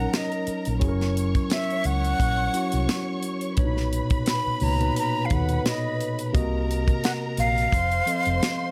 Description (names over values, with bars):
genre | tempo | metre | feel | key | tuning
lush 1970s-style soul | 87 BPM | 4/4 | swing 54% on 16ths | unclear | A4 = 440 Hz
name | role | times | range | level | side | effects
breathy jazz flute | melody | 0.0-8.7 s | D#5 to B5 | -29 LUFS | equal | none
warm studio string section | second line | 0.0-8.7 s | Bb4 to Db6 | -36 LUFS | equal | none
mellow tine electric piano | accompaniment | 0.0-8.7 s | A#2 to Eb5 | -30 LUFS | equal | none
hollow-body short-scale fingered electric bass | bass | 0.0-8.4 s | F1 to D#2 | -28 LUFS | equal | none
tight funk drum kit | drums | 0.1-8.6 s | hi-hat, kick drum, snare drum | -28 LUFS | equal | none
room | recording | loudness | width
small room ambience | none | -24 LUFS | mono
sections
0.0-8.7 A section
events
none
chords
0.0 Gb6; 0.8 Gb7; 3.6 Bmaj9; 6.3 Cm7b5; 7.7 F7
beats
0.13 | 0.82 1.51 2.20 2.89 | 3.58 4.27 4.96 5.65 | 6.34 7.03 7.72 8.42